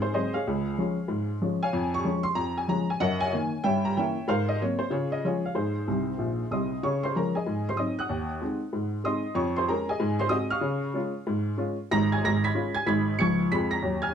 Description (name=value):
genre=jazz, stride piano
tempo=189 BPM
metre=4/4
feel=swing 63% on 8ths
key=Db major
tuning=A4 = 440 Hz
part: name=clear upright piano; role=solo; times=0.0-14.1 s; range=G#1 to C#7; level=-25 LUFS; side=equal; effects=none
room=wet club reverb, RT60 0.8 s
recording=dark, warm production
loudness=-25 LUFS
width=side -8 dB against mid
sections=0.0-6.8 A section; 6.8-14.1 A section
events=upright piano fill 5.9-6.8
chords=0.5 Db; 1.7 Db/F; 3.0 Ebm/Gb; 3.6 Gdim7; 4.3 Ab9; 4.9 Db; 5.5 Ab; 6.8 Db; 7.5 Ab7; 8.1 Ab7/Eb; 9.4 Db/F; 10.0 Ab7; 10.6 Db; 11.9 C#7/G#; 13.2 C#7